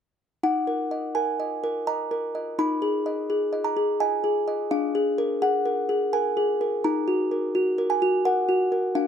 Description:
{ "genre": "classical, lullaby for music box", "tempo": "85 BPM", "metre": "3/4", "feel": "straight", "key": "Eb minor", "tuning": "A4 = 440 Hz", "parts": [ { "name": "music box", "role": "solo", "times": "0.4-9.1 s", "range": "D4 to Cb6", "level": "-22 LUFS", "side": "equal", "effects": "none" } ], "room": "light reverb", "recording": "none", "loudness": "-22 LUFS", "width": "side -8 dB against mid", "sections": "0.4-9.1 A section", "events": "none", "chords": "0.4 Ebm; 2.6 Abm/Eb; 4.7 Bb7/D; 6.8 Ebm" }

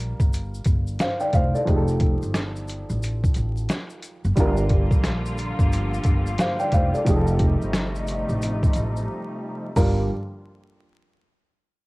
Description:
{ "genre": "hip hop, boom-bap hip-hop", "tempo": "89 BPM", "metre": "4/4", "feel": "swing 62% on 16ths", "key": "G minor", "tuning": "A4 = 439 Hz", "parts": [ { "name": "dark upright piano", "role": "accompaniment", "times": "0.0-10.1 s", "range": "F3 to G5", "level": "-27 LUFS", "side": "right 1 dB", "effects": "low-pass filter, cassette tape" }, { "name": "upright bass", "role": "bass", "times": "0.0-10.1 s", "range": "F1 to Bb1", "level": "-25 LUFS", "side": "equal", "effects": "none" }, { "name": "boom bap sampler-style drum kit", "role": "drums", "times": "0.0-10.0 s", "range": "hi-hat, kick drum, snare drum", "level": "-22 LUFS", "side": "equal", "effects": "cassette tape" }, { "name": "tube shaker", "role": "percussion", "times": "0.2-10.1 s", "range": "none", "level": "-47 LUFS", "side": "left 3 dB", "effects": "none" }, { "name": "bright symphonic string section", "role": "sustained chords", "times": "4.4-10.1 s", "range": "C3 to F4", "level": "-30 LUFS", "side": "equal", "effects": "low-pass filter, cassette tape" } ], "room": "light reverb", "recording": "home recording on cassette, vinyl crackle", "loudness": "-20 LUFS", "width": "side -22 dB against mid", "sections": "0.0-9.8 A section; 9.8-11.9 B section", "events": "filter sweep 0.0-9.8; break 9.1-9.8", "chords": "0.0 Gm7; 1.7 F9; 4.4 Gm7; 7.1 F9; 9.8 Gm7" }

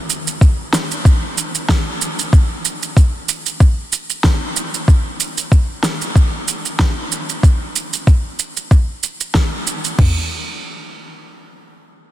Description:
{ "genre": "organic downtempo", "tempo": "94 BPM", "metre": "4/4", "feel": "swing 55% on 16ths", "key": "none", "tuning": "none", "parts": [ { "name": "electronic shaker and snare drum", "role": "drums", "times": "0.1-10.0 s", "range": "none", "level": "-20 LUFS", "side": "right 2 dB", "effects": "overdrive, small room ambience" }, { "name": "organic electronic drum kit", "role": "drums", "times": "0.4-10.1 s", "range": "crash cymbal, kick drum, toms", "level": "-11 LUFS", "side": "equal", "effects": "small room ambience" } ], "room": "light reverb, digital ambience", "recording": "dense, heavily limited modern master", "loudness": "-14 LUFS", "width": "side -14 dB against mid", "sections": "0.0-10.0 A section; 10.0-12.1 B section", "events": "none", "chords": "none" }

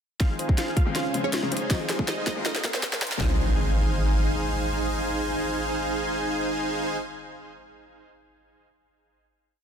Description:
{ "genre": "future bass", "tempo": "160 BPM", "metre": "4/4", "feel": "half-time", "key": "Ab major", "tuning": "A4 = 439 Hz", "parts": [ { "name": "wide unison pluck", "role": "melody", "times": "0.2-7.7 s", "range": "C4 to F5", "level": "-33 LUFS", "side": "right 2 dB", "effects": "phaser, sidechain pumping, ping-pong delay" }, { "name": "bright grand piano", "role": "accompaniment", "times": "0.2-7.7 s", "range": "Db3 to F4", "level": "-36 LUFS", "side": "left 6 dB", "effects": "sidechain pumping, tape echo" }, { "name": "thumb-piano-like synth pluck", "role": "arpeggios", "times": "0.2-3.4 s", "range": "F4 to Eb5", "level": "-39 LUFS", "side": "left 2 dB", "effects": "chorus, sidechain pumping, tape echo" }, { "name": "dense compressed supersaw", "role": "riff", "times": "0.2-7.0 s", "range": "Db4 to C6", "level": "-28 LUFS", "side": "right 1 dB", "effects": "sidechain pumping, low-pass filter, tape echo" }, { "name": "warm 808-style bass", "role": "bass", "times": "0.2-4.3 s", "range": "F1 to Db2", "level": "-27 LUFS", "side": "equal", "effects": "sidechain pumping, high-pass filter" }, { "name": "trap drum kit", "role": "drums", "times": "0.2-3.3 s", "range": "handclaps, kick drum, snare drum, toms", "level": "-25 LUFS", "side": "equal", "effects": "none" }, { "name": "trap drum kit", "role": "drums", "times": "0.2-3.2 s", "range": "hi-hat, snare drum", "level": "-30 LUFS", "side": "equal", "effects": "none" }, { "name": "riser and impact", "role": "sound effects", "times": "1.3-7.7 s", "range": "none", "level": "-33 LUFS", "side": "equal", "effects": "none" } ], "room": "light reverb", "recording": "dense, heavily limited modern master, high-pass filter", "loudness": "-23 LUFS", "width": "side -8 dB against mid", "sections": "0.2-3.2 build; 3.2-6.2 final chord", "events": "build-up 0.2-3.2; drum fill 0.2-3.2; filter sweep on supersaw synth 0.2-3.2; filter sweep 0.2-3.2; riser 1.3-3.2", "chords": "0.2 Ab6; 1.0 Fm7; 2.5 Bbm9; 3.2 Ab6" }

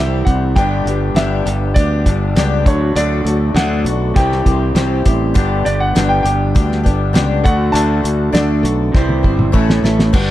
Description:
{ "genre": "folk rock and heartland rock", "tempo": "100 BPM", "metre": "4/4", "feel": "straight", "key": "D major", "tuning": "A4 = 441 Hz", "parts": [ { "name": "warm baby grand piano", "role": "melody", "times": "0.0-9.5 s", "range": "C#5 to A5", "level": "-21 LUFS", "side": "equal", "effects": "none" }, { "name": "picked twelve-string acoustic guitar", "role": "accompaniment", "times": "0.0-10.3 s", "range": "G2 to C5", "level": "-22 LUFS", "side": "left 6 dB", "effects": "none" }, { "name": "electric guitar through a small old amp", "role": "riff", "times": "0.0-10.3 s", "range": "G2 to G4", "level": "-20 LUFS", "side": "right 2 dB", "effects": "none" }, { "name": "modern bright fingered electric bass", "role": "bass", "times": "0.0-10.3 s", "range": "G1 to D2", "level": "-17 LUFS", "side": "equal", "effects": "none" }, { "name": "cloth-damped thuddy drum kit", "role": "drums", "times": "0.3-10.3 s", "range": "crash cymbal, hi-hat, kick drum, snare drum, toms", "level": "-15 LUFS", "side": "equal", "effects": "none" } ], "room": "little or no reverb", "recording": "dark, warm production", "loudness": "-12 LUFS", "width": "side -14 dB against mid", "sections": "0.0-10.1 A section", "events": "drum fill 8.9-10.1", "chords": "0.0 C; 0.6 G; 2.7 D; 4.2 C; 5.4 G; 7.5 D; 8.9 C; 9.5 A" }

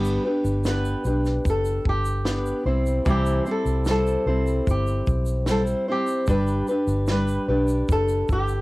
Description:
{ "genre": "acoustic pop", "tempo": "75 BPM", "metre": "4/4", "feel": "straight", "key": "G major", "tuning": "A4 = 441 Hz", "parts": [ { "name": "flamenco guitar", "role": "melody", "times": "0.0-8.6 s", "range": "G4 to B4", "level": "-28 LUFS", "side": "left 1 dB", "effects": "none" }, { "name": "fingerpicked steel-string acoustic guitar", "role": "accompaniment", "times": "0.0-8.6 s", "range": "C3 to C5", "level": "-24 LUFS", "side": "equal", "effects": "cassette tape" }, { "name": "vintage muted fingered electric bass", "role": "bass", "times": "0.0-8.6 s", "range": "F#1 to C2", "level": "-24 LUFS", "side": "equal", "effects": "none" }, { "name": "compact cocktail drum kit", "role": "drums", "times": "0.0-8.6 s", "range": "kick drum, shaker, snare drum", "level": "-27 LUFS", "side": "equal", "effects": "cassette tape" } ], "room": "light reverb", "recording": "home recording on cassette", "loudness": "-20 LUFS", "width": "side -20 dB against mid", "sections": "0.0-8.6 A section", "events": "none", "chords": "0.0 G; 2.7 C; 6.3 G" }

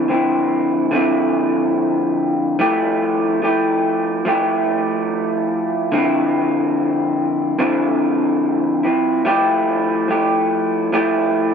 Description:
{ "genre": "indie pop", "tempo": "72 BPM", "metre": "4/4", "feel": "swing 55% on 16ths", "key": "F major", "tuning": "A4 = 440 Hz", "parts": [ { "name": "electric guitar through a small old amp", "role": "solo", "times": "0.0-11.5 s", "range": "D3 to G4", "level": "-16 LUFS", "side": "equal", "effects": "lush chorus, vibrato effect" } ], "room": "light reverb", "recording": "dry, close 1970s-style studio recording", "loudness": "-16 LUFS", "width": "side -7 dB against mid", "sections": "0.0-11.5 A section", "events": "none", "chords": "0.0 Dm9; 2.6 Fmaj9; 5.9 Dm9; 9.3 Fmaj9" }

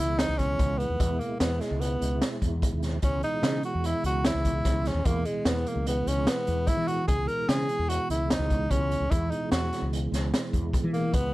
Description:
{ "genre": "progressive instrumental, band music in an uneven meter", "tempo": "148 BPM", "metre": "5/4", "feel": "straight", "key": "C# dorian", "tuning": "A4 = 440 Hz", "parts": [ { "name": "breathy tenor saxophone", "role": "melody", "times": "0.0-11.3 s", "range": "G#3 to A#4", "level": "-29 LUFS", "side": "equal", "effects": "none" }, { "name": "percussive tonewheel organ", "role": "accompaniment", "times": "0.0-11.3 s", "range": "B2 to E4", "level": "-34 LUFS", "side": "right 3 dB", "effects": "chorus vibrato, fast rotary speaker" }, { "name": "mellow fretless electric bass", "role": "bass", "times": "0.0-11.3 s", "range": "C#2 to E3", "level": "-29 LUFS", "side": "equal", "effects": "analog chorus" }, { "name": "raw garage drum kit", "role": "drums", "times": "0.2-11.2 s", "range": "hi-hat, kick drum, snare drum", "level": "-29 LUFS", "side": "equal", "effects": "none" } ], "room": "little or no reverb", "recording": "none", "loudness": "-24 LUFS", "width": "side -18 dB against mid", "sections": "0.0-11.3 A section", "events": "none", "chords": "0.0 C#m7" }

